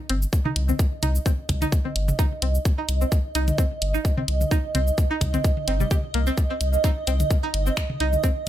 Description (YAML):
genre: minimal techno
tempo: 129 BPM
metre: 4/4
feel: swing 55% on 16ths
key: C minor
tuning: A4 = 440 Hz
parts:
  - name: granular cloud pad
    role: texture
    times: 0.6-8.5 s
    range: Eb5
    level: -30 LUFS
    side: right 4 dB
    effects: built-in reverb, sidechain pumping
  - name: string-like resonator pluck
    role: riff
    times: 0.1-8.3 s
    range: G3 to G4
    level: -28 LUFS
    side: equal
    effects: chorus, phaser, sidechain pumping, digital delay
  - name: saturated sub bass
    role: bass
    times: 0.1-8.2 s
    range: G1 to C2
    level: -23 LUFS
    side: equal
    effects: sidechain pumping
  - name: garage drum kit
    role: drums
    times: 0.1-8.3 s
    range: cabasa, finger snaps, hi-hat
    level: -29 LUFS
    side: equal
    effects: none
  - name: electronic kick drum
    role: drums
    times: 0.3-8.3 s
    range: none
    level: -22 LUFS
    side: equal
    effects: none
  - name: electronic toms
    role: percussion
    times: 0.5-8.2 s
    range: none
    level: -31 LUFS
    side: left 1 dB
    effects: digital delay
room: light reverb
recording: none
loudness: -20 LUFS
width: side -12 dB against mid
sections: 0.0-8.5 A section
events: none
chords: 0.0 Cm